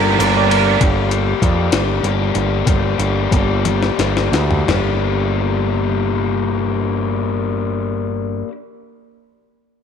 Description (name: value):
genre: indie rock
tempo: 56-66 BPM (dotted quarters)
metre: 6/8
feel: straight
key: G minor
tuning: A4 = 437 Hz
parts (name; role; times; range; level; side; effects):
- tine electric piano; second line; 0.0-0.8 s; Bb4 to D5; -23 LUFS; right 12 dB; none
- overdriven electric guitar; riff; 0.0-8.5 s; G3 to Bb4; -20 LUFS; left 9 dB; none
- scooped high-gain guitar; riff; 0.0-0.8 s; Bb3 to G4; -20 LUFS; right 14 dB; distortion, ensemble chorus, tape echo
- growling picked electric bass; bass; 0.0-8.4 s; G1 to F2; -19 LUFS; right 2 dB; overdrive
- jungle sampler-style drum kit; drums; 0.2-4.9 s; hi-hat, kick drum, ride cymbal, snare drum, toms; -20 LUFS; left 2 dB; none
- egg shaker; percussion; 0.2-0.6 s; none; -38 LUFS; left 12 dB; none
room: light reverb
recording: 1960s-style stereo with parts hard left and right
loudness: -15 LUFS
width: side -7 dB against mid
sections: 0.8-4.7 A section; 4.7-9.0 B section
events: slowing down 0.8-4.7; drum fill 3.6-4.7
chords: 0.0 Gm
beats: | 0.80 1.72 | 2.66 3.64 | 4.68 5.76 | 6.83 7.91